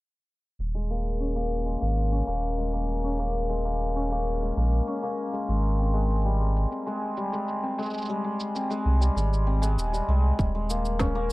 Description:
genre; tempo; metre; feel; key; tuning
folktronica; 98 BPM; 4/4; straight; unclear; A4 = 441 Hz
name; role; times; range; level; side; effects
warm sub bass; bass; 0.6-11.3 s; Eb1 to C2; -25 LUFS; equal; none
electronic shaker and snare drum; drums; 0.6-11.3 s; none; -36 LUFS; right 1 dB; none
hammered dulcimer; arpeggios; 0.7-11.3 s; G3 to Db4; -28 LUFS; left 2 dB; low-pass filter, tape echo
electronic kick drum; drums; 10.4-11.1 s; none; -25 LUFS; equal; none
room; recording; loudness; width
little or no reverb; dry, close 1970s-style studio recording, low-pass filter; -24 LUFS; side -20 dB against mid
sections
0.6-10.4 A section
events
filter sweep on sub bass 0.6-10.4; filter sweep on hammered dulcimer 0.6-10.4; filter sweep 0.6-10.4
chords
0.6 Eb7sus4; 5.5 Abmaj7; 10.4 Eb7sus4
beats
| 0.59 1.20 1.81 2.43 | 3.04 3.65 4.26 4.88 | 5.49 6.10 6.71 7.33 | 7.94 8.55 9.16 9.77 | 10.39 11.00

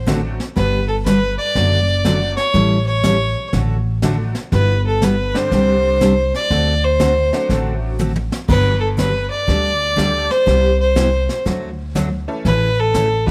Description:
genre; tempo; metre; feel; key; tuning
country, western swing; 121 BPM; 4/4; swing 66% on 8ths; G major; A4 = 441 Hz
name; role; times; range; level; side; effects
clear fiddle; melody; 0.0-13.3 s; A4 to D5; -20 LUFS; equal; none
upright bass; bass; 0.0-13.2 s; F#1 to D2; -22 LUFS; equal; none
picked steel-string acoustic guitar; accompaniment; 0.1-13.1 s; C3 to A4; -23 LUFS; equal; none
tack piano; accompaniment; 0.1-13.3 s; D3 to A4; -29 LUFS; equal; none
jazz brush drum kit; drums; 0.1-13.3 s; brushed snare drum, crash cymbal, hi-hat, kick drum, snare drum, toms; -26 LUFS; equal; none
room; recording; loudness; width
light reverb; vinyl crackle; -17 LUFS; mono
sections
0.6-13.3 A section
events
drum fill 8.0-8.5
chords
0.0 D7; 0.6 G; 1.6 D/F#; 2.5 A7; 3.5 D/A; 4.5 G6; 5.5 Csus2; 6.5 D7; 8.5 Gmaj7; 9.5 Dsus4; 10.5 Cmaj7; 11.5 D; 12.5 A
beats
0.07 | 0.57 1.06 1.55 2.05 | 2.54 3.04 3.53 4.03 | 4.52 5.02 5.51 6.01 | 6.50 7.00 7.49 7.99 | 8.48 8.98 9.48 9.97 | 10.47 10.96 11.46 11.96 | 12.46 12.95

